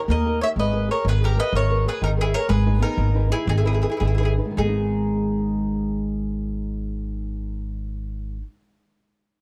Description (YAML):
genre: italian folk, Italian serenade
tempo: 101-125 BPM (dotted quarters)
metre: 6/8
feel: straight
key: G# minor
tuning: A4 = 438 Hz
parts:
  - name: nylon-string guitar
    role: accompaniment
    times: 0.0-8.5 s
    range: G#2 to B4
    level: -29 LUFS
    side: equal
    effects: none
  - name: mandolin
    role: melody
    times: 0.1-8.4 s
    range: G#4 to E5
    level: -29 LUFS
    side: equal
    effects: none
  - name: bowl-back mandolin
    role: second line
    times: 0.1-8.4 s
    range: D#4 to C#5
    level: -33 LUFS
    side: equal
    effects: none
  - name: upright bass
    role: bass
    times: 0.1-8.4 s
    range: G#1 to D#2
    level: -26 LUFS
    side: equal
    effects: none
room: little or no reverb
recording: dark, warm production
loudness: -23 LUFS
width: mono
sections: 0.0-4.6 A section; 4.6-7.0 B section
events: slowing down 2.5-4.6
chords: 0.0 D#; 0.6 G#madd9; 2.5 G#m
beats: 0.08 | 0.56 1.05 | 1.53 2.02 | 2.50 2.98 | 3.48 4.01 | 4.58 5.18 | 5.77 6.36